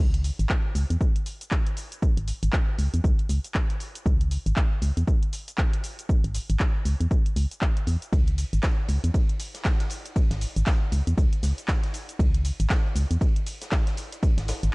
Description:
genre	deep house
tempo	118 BPM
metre	4/4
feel	swing 59% on 16ths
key	C# minor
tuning	A4 = 442 Hz
part	organ-like FM bass	bass	0.0-14.7 s	G#1 to E2	-23 LUFS	equal	sidechain pumping
part	punchy analog drum machine	drums	0.1-14.7 s	cabasa, handclaps, hi-hat	-34 LUFS	equal	vintage 12-bit sampler grit, studio reverb
part	electronic kick drum	drums	0.5-14.3 s	none	-23 LUFS	equal	vintage 12-bit sampler grit, studio reverb
part	huge arena drum kit	drums	8.1-14.6 s	ride cymbal, snare drum	-41 LUFS	left 1 dB	high-pass filter on cymbals, vintage 12-bit sampler grit, studio reverb, high-pass filter on snare, high-pass filter on room
room	studio ambience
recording	dark, warm production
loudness	-22 LUFS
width	side -28 dB against mid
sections	0.0-14.7 A section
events	none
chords	none

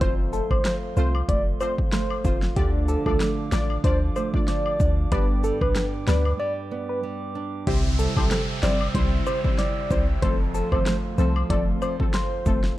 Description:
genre	dancehall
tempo	94 BPM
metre	4/4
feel	swing 56% on 16ths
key	F lydian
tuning	A4 = 440 Hz
part	soft struck synth lead	melody	0.0-12.6 s	G4 to D5	-28 LUFS	equal	chorus, digital delay
part	synth brass stab	accompaniment	0.0-12.6 s	F3 to D5	-31 LUFS	left 1 dB	chorus, sidechain pumping
part	glass harmonica	sustained chords	0.0-12.8 s	A4 to E6	-38 LUFS	equal	none
part	nylon-string guitar	arpeggios	0.0-12.8 s	F2 to F4	-31 LUFS	right 4 dB	none
part	clean 808-style bass	bass	0.0-12.7 s	F1 to D2	-24 LUFS	equal	none
part	deep house drum kit	drums	0.0-12.8 s	hi-hat, kick drum, rim click, snare drum	-25 LUFS	equal	none
part	cabasa and woodblock	percussion	0.3-12.6 s	none	-36 LUFS	left 8 dB	none
part	downlifter	sound effects	7.7-12.8 s	none	-36 LUFS	equal	none
room	little or no reverb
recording	dark, warm production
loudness	-21 LUFS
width	side -15 dB against mid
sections	0.0-7.7 A section; 7.7-12.8 B section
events	break 6.4-7.7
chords	0.0 F; 2.6 Dm; 5.1 G; 7.7 C; 10.2 F

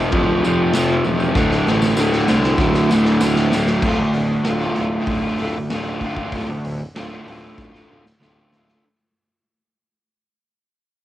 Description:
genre	garage rock duo or trio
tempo	96 BPM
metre	4/4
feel	straight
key	D minor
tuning	A4 = 440 Hz
part	raw garage guitar	riff	0.0-8.8 s	D2 to F4	-18 LUFS	equal	overdrive, cassette tape
part	warm tuba	bass	0.1-8.7 s	D1 to C2	-24 LUFS	equal	overdrive
part	raw garage drum kit	drums	0.1-8.8 s	crash cymbal, hi-hat, kick drum, snare drum	-23 LUFS	equal	cassette tape
part	tambourine	percussion	0.4-3.7 s	none	-36 LUFS	right 2 dB	none
room	light reverb, small room ambience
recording	home recording on cassette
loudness	-16 LUFS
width	side -13 dB against mid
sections	0.0-3.8 A section; 3.8-8.8 B section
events	drum fill 1.4-3.8, 7.6-8.8; fade-out 3.8-8.8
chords	0.0 F5; 1.4 D5; 3.8 Dm

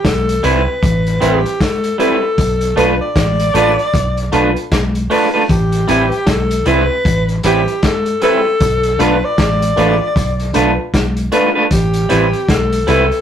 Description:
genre	lovers rock reggae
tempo	77 BPM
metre	4/4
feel	swing 61% on 16ths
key	A minor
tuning	A4 = 443 Hz
part	breathy alto saxophone	melody	0.0-13.2 s	G4 to D5	-17 LUFS	left 1 dB	none
part	vintage drum kit	drums	0.0-13.2 s	hi-hat, kick drum, snare drum	-18 LUFS	left 1 dB	dub echo
part	vintage muted fingered electric bass	bass	0.1-13.1 s	A1 to C2	-18 LUFS	equal	none
part	FM electric piano with soft pad layer	accompaniment	0.4-13.0 s	C4 to B4	-20 LUFS	equal	chorus, phaser
part	electric guitar through a small old amp	stabs	0.4-13.0 s	G3 to B4	-15 LUFS	right 2 dB	none
room	moderate studio reverb, RT60 0.6 s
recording	rough rehearsal-room recording, tube saturation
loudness	-12 LUFS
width	side -9 dB against mid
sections	0.0-13.2 A section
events	none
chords	0.0 Am9; 2.4 Bm7b5; 5.5 Am9; 8.6 Bm7b5; 11.7 Am9

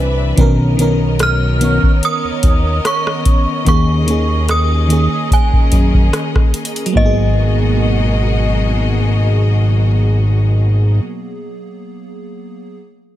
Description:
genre	contemporary R&B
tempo	73 BPM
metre	4/4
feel	swing 54% on 16ths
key	G# minor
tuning	A4 = 440 Hz
part	FM electric piano with soft pad layer	accompaniment	0.0-12.8 s	D#3 to C#5	-20 LUFS	equal	chorus
part	clear symphonic string section	sustained chords	0.0-11.0 s	B2 to E5	-24 LUFS	left 3 dB	sidechain pumping
part	fat analog bass	bass	0.0-11.0 s	G#1 to F#2	-14 LUFS	equal	none
part	booming analog drum machine	drums	0.4-7.2 s	hi-hat, kick drum, rim click	-14 LUFS	equal	none
part	synth chime	melody	1.2-11.6 s	D#5 to E#6	-21 LUFS	right 2 dB	ensemble chorus, ping-pong delay
room	digital ambience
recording	none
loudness	-12 LUFS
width	side -13 dB against mid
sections	0.0-7.0 A section; 7.0-10.2 B section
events	none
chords	0.4 Bmaj9; 3.7 D#7sus4; 7.0 G#m9

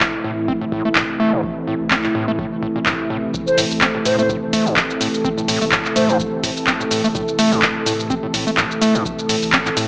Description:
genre	acid house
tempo	126 BPM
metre	4/4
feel	swing 55% on 16ths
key	A minor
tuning	A4 = 439 Hz
part	warm analog pad	sustained chords	0.0-9.9 s	C3 to A4	-21 LUFS	equal	chorus, sidechain pumping
part	warm sub bass	bass	0.0-9.9 s	G1 to A2	-31 LUFS	equal	sidechain pumping
part	electronic kick drum	drums	0.0-9.6 s	none	-30 LUFS	equal	none
part	punchy analog drum machine	drums	0.0-9.9 s	handclaps, hi-hat, shaker	-18 LUFS	equal	none
part	overdriven acid bass	riff	0.2-9.9 s	G2 to C4	-21 LUFS	equal	distortion, cassette tape, sidechain pumping, dub echo
part	hollow concert flute	melody	3.5-6.2 s	C5	-20 LUFS	equal	digital delay
room	moderate spring reverb, RT60 2.0 s, digital ambience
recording	small speaker sound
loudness	-15 LUFS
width	side -29 dB against mid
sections	0.0-9.9 A section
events	none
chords	0.0 Am

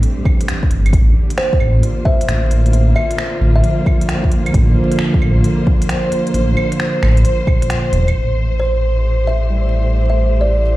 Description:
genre	future garage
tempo	133 BPM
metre	4/4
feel	swing 66% on 16ths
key	A phrygian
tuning	A4 = 440 Hz
part	barky tine electric piano	accompaniment	0.0-10.8 s	Bb2 to G3	-22 LUFS	right 2 dB	sidechain pumping, analog delay
part	warm studio string section	sustained chords	0.0-10.8 s	D3 to C5	-22 LUFS	equal	sidechain pumping
part	organic electronic drum kit	drums	0.0-8.1 s	claves, finger snaps, hi-hat	-25 LUFS	equal	overdrive, low-pass filter on hats, low-pass filter on snare, low-pass filter on perc, low-pass filter on room
part	electronic kick drum	drums	0.3-7.6 s	none	-15 LUFS	equal	overdrive
part	dark detuned saw bass	bass	0.7-10.8 s	E1 to A1	-14 LUFS	equal	tube saturation, sidechain pumping
part	kalimba	melody	1.4-3.9, 8.6-10.6 s	C5 to E5	-22 LUFS	equal	tape echo
part	backwards swelling texture	texture	9.4-10.8 s	E4 to E5	-33 LUFS	equal	built-in reverb
room	digital ambience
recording	played on a big sound system in a bare room, large studio reverb, vinyl crackle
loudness	-12 LUFS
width	side -17 dB against mid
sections	0.0-8.1 A section; 8.1-10.8 B section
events	kick drops out 7.7-8.1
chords	0.0 Am7; 0.9 Bbadd9/A; 8.1 Am7

